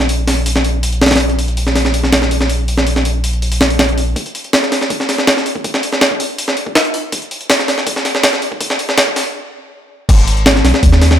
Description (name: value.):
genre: drum and bass, jungle.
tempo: 162 BPM.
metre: 4/4.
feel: straight.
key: unclear.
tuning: A4 = 441 Hz.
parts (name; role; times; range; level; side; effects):
soft dub sub bass; bass; 0.0-4.1, 10.1-11.2 s; G#1 to D#2; -15 LUFS; equal; tube saturation.
jungle sampler-style drum kit; drums; 0.0-11.2 s; crash cymbal, hi-hat, kick drum, snare drum; -13 LUFS; equal; overdrive, high-pass filter on hats, high-pass filter on snare, high-pass filter on kick, high-pass filter on cymbals, high-pass filter on room.
room: little or no reverb.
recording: none.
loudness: -12 LUFS.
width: side -10 dB against mid.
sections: 0.0-4.2 A section; 4.2-10.1 B section; 10.1-11.2 C section.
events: build-up 4.2-10.1; stop 9.3-10.1; drop 10.1-11.2.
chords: none.